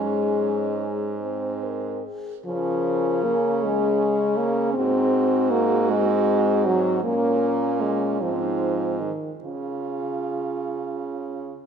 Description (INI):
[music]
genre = classical, lyrical piece for horn quartet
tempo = 52 BPM (dotted quarters)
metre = 6/8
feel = uneven beats, rubato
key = Db major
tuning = A4 = 440 Hz
[part]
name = mellow French horn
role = melody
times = 0.0-11.3 s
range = C4 to C5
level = -30 LUFS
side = left 5 dB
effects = none
[part]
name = clear French horn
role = second line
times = 0.0-11.6 s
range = C4 to Gb4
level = -29 LUFS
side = right 10 dB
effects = none
[part]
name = mellow French horn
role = accompaniment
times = 0.0-11.5 s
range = Db3 to C4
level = -23 LUFS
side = left 2 dB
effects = none
[part]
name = clear French horn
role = bass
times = 0.0-11.6 s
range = Ab2 to Db3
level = -29 LUFS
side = right 5 dB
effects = none
[sound]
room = moderate concert hall reverb, RT60 2.3 s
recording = minimal, uncompressed stereo recording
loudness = -21 LUFS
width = side -7 dB against mid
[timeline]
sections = 0.0-11.7 A section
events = none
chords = 0.0 Absus4; 2.5 Db; 4.8 Ab7; 7.0 Bbm; 8.2 Ab; 9.4 Db